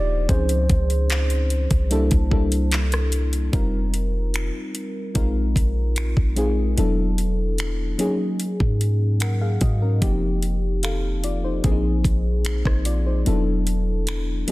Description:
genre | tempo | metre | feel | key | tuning
contemporary R&B | 74 BPM | 4/4 | straight | unclear | A4 = 440 Hz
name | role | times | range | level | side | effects
mellow tine electric piano | melody | 0.0-2.7 s | C5 to D5 | -29 LUFS | right 2 dB | slow stereo tremolo, tape echo
mellow FM electric piano | accompaniment | 0.0-14.5 s | Eb3 to Gb5 | -26 LUFS | left 2 dB | chorus
clean 808-style bass | bass | 0.0-14.4 s | Eb1 to Ab2 | -22 LUFS | equal | none
smooth R&B drum kit | drums | 0.3-14.5 s | finger snaps, handclaps, hi-hat, kick drum, rim click | -24 LUFS | equal | soft clipping on snare
room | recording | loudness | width
digital ambience | dense, heavily limited modern master | -19 LUFS | side -19 dB against mid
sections
0.0-3.5 A section; 3.5-14.5 B section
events
none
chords
0.3 Dbmaj9; 1.9 C13; 3.5 F9sus4; 5.2 Bb9sus4; 6.8 E9sus4; 8.0 Ab9sus4; 10.0 F9sus4; 11.6 Bb9sus4; 13.3 E9sus4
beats
| 0.29 1.10 1.91 2.72 | 3.53 4.34 5.15 5.96 | 6.78 7.59 8.40 9.21 | 10.02 10.83 11.64 12.45 | 13.26 14.07

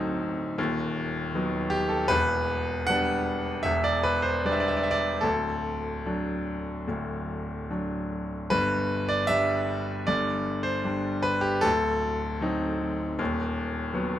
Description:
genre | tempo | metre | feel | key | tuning
classical, romantic character piece for solo piano | 75 BPM | 4/4 | uneven beats, rubato | unclear | A4 = 441 Hz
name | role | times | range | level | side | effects
bright grand piano | solo | 0.0-14.2 s | D1 to F#5 | -25 LUFS | equal | none
room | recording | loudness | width
light reverb | close, detailed microphones | -25 LUFS | side -11 dB against mid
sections
0.0-14.2 A section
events
none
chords
0.0 D7b9; 0.6 B7/D#; 2.1 Em7; 5.2 D; 8.5 G5; 11.6 D7b9; 13.2 B7/D#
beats
0.58 1.34 | 2.10 2.90 3.66 4.43 | 5.24 6.07 6.90 7.71 | 8.52 9.31 10.10 10.87 | 11.65 12.43 13.20 13.96

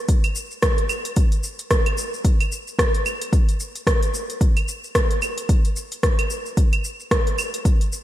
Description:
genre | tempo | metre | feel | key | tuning
downtempo | 111 BPM | 4/4 | swing 58% on 16ths | none | none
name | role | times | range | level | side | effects
electronic kick drum | drums | 0.1-7.8 s | none | -19 LUFS | equal | overdrive
organic electronic drum kit | drums | 0.1-8.0 s | claves, hi-hat, rim click, shaker | -24 LUFS | equal | overdrive
room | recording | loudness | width
light reverb | none | -19 LUFS | side -13 dB against mid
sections
0.0-8.0 A section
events
none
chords
none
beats
| 0.08 0.62 1.17 1.71 | 2.25 2.79 3.33 3.87 | 4.41 4.95 5.49 6.03 | 6.57 7.11 7.65

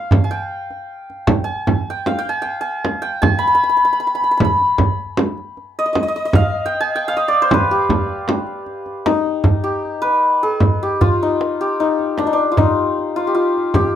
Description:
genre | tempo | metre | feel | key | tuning
Persian modal ensemble | 77 BPM | 4/4 | straight | G dastgah homayun | A4 = 440 Hz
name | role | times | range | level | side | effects
santur | melody | 0.0-14.0 s | D4 to B5 | -17 LUFS | left 1 dB | none
frame drum | percussion | 0.1-13.9 s | none | -18 LUFS | equal | none
tombak | percussion | 0.1-13.7 s | none | -20 LUFS | right 3 dB | none
room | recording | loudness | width
wet small room reverb, RT60 0.5 s | none | -15 LUFS | side -10 dB against mid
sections
0.0-9.5 A section; 9.5-14.0 B section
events
none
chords
none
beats
| 0.11 0.89 1.67 2.45 | 3.23 4.01 4.79 5.57 | 6.35 7.13 7.91 8.69 | 9.47 10.24 11.02 11.80 | 12.58 13.36

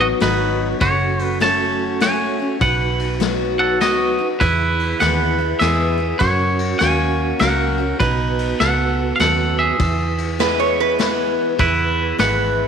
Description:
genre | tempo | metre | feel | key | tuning
honky-tonk and classic country | 100 BPM | 3/4 | swing 64% on 8ths | E major | A4 = 440 Hz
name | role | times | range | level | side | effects
twangy electric guitar | melody | 0.0-12.7 s | D#4 to A5 | -19 LUFS | right 1 dB | none
mellow tonewheel organ | accompaniment | 0.0-12.7 s | B3 to B4 | -25 LUFS | right 11 dB | slow rotary speaker
picked steel-string acoustic guitar | accompaniment | 0.0-12.7 s | E2 to F#4 | -24 LUFS | left 9 dB | none
vintage muted fingered electric bass | bass | 0.0-12.7 s | F#1 to F#2 | -23 LUFS | right 1 dB | none
vintage brush drum kit | drums | 0.2-12.4 s | kick drum, ride cymbal, snare drum | -25 LUFS | left 4 dB | none
lap resonator guitar | second line | 10.4-11.5 s | B4 to C#5 | -21 LUFS | right 7 dB | none
room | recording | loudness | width
moderate echo chamber reverb, RT60 1.7 s, small room ambience | 1960s-style stereo with parts hard left and right | -16 LUFS | side -7 dB against mid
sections
0.0-11.6 A section; 11.6-12.7 A section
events
none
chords
0.0 B; 0.8 F#m; 2.6 B; 4.4 E; 6.2 F#; 8.0 B7; 9.8 E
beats
0.21 | 0.81 1.41 2.01 | 2.61 3.21 3.81 | 4.41 5.01 5.61 | 6.21 6.81 7.41 | 8.01 8.60 9.20 | 9.80 10.40 11.00 | 11.60 12.19

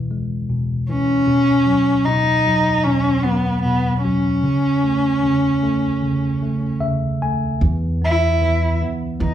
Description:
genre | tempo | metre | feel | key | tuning
acoustic folk-pop ballad | 76 BPM | 4/4 | straight | unclear | A4 = 441 Hz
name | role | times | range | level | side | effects
tine electric piano | accompaniment | 0.0-9.3 s | E2 to G#5 | -20 LUFS | equal | none
warm cello | melody | 0.9-9.3 s | B3 to E4 | -18 LUFS | equal | none
upright bass | bass | 7.6-9.3 s | E2 | -19 LUFS | equal | none
room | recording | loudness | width
wet large studio reverb, RT60 0.8 s | heard from further back in the room | -16 LUFS | side -10 dB against mid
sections
0.0-7.6 A section; 7.6-9.3 B section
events
none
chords
0.0 E; 1.3 Badd9; 4.4 A/C#; 7.6 E5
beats
0.50 | 1.28 2.07 2.86 3.65 | 4.44 5.23 6.02 6.82 | 7.62 8.41 9.20

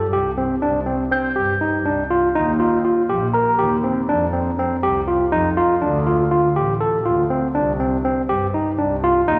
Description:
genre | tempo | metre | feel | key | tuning
contemporary instrumental, chamber music in an uneven meter | 243 BPM (eighths) | 7/8 | straight | C dorian | A4 = 440 Hz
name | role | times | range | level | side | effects
barky tine electric piano | arpeggios | 0.0-9.4 s | C4 to Bb4 | -20 LUFS | equal | none
warm double bass | bass | 0.1-9.4 s | A1 to G2 | -26 LUFS | equal | none
glockenspiel with rubber mallets | texture | 1.1-4.3 s | Bb5 to G6 | -28 LUFS | equal | none
room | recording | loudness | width
wet scoring stage reverb, RT60 1.8 s | none | -19 LUFS | mono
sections
0.6-9.4 A section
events
none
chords
0.0 C5; 0.6 Csus2; 2.4 Ebadd9; 4.1 F5; 5.8 Dm; 7.5 Csus2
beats
0.13 0.38 | 0.62 0.87 1.12 1.36 1.61 1.86 2.11 | 2.35 2.60 2.85 3.10 3.34 3.59 3.84 | 4.08 4.33 4.58 4.83 5.07 5.32 5.57 | 5.82 6.06 6.31 6.56 6.80 7.05 7.30 | 7.54 7.79 8.04 8.29 8.53 8.78 9.03 | 9.27

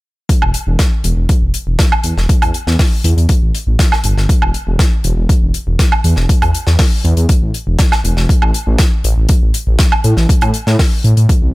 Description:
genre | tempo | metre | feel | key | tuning
progressive house | 120 BPM | 4/4 | straight | unclear | A4 = 441 Hz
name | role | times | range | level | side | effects
electronic kick drum | drums | 0.3-11.4 s | none | -12 LUFS | equal | overdrive
modern studio drum kit | drums | 0.3-11.4 s | hi-hat, snare drum | -21 LUFS | left 2 dB | high-pass filter on hats, high-pass filter on snare, high-pass filter on room
dark detuned saw bass | bass | 0.4-11.5 s | E1 to A2 | -13 LUFS | equal | sidechain pumping
woodblock | drums | 0.4-10.5 s | none | -19 LUFS | right 3 dB | overdrive
room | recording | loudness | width
little or no reverb | none | -11 LUFS | side -20 dB against mid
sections
0.3-11.5 A section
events
none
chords
none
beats
| 0.29 0.79 1.29 1.79 | 2.29 2.79 3.29 3.79 | 4.29 4.79 5.29 5.79 | 6.29 6.79 7.29 7.79 | 8.29 8.79 9.29 9.79 | 10.29 10.79 11.29

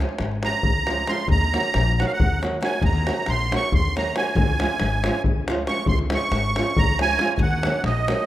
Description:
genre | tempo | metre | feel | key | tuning
balkan folk, Balkan wedding band | 275 BPM (eighths) | 7/8 | straight | Db major | A4 = 440 Hz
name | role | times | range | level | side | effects
flamenco guitar | accompaniment | 0.0-8.2 s | F3 to Gb4 | -29 LUFS | right 2 dB | none
davul | percussion | 0.1-8.2 s | none | -24 LUFS | left 1 dB | none
upright bass | bass | 0.2-8.1 s | Ab1 to Eb2 | -24 LUFS | equal | none
musette accordion | second line | 0.4-8.3 s | Eb5 to Db6 | -24 LUFS | right 3 dB | none
room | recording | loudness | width
light reverb, studio ambience | rough home demo mix | -19 LUFS | side -14 dB against mid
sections
0.0-8.3 A section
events
accordion solo 0.0-8.3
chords
0.0 Db; 1.3 Ebm; 4.4 Db; 7.4 Ebm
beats
0.20 0.42 0.64 0.85 1.07 | 1.29 1.51 1.73 1.95 2.17 2.39 2.61 | 2.83 3.04 3.26 3.48 3.70 3.92 4.14 | 4.35 4.57 4.79 5.01 5.22 5.44 5.66 | 5.88 6.09 6.31 6.53 6.74 6.96 7.18 | 7.39 7.61 7.83 8.04 8.26

